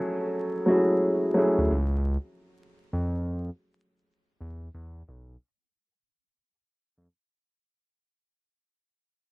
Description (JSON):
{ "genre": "hip hop, boom-bap hip-hop", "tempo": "89 BPM", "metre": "4/4", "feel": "swing 62% on 16ths", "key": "unclear", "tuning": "A4 = 440 Hz", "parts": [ { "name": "nylon-string guitar", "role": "melody", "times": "0.0-1.2 s", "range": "F#4 to A4", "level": "-31 LUFS", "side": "left 1 dB", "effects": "high-pass filter, low-pass filter, cassette tape, analog delay" }, { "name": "dark upright piano", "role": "accompaniment", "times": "0.0-1.7 s", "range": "F#3 to A4", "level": "-23 LUFS", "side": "equal", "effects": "high-pass filter, low-pass filter, cassette tape" }, { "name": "smooth gliding synth bass", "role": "bass", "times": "1.6-7.1 s", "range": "B1 to E#2", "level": "-28 LUFS", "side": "equal", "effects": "none" } ], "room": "light reverb", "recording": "home recording on cassette, vinyl crackle", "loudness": "-23 LUFS", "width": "side -24 dB against mid", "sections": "0.0-7.1 A section", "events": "fade-out 0.0-7.1; break 1.7-7.1", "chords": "0.0 F#m9; 1.7 C#; 4.4 E5", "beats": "0.35 1.03 | 1.70 2.38 3.05 3.72 | 4.40 5.07 5.75 6.42" }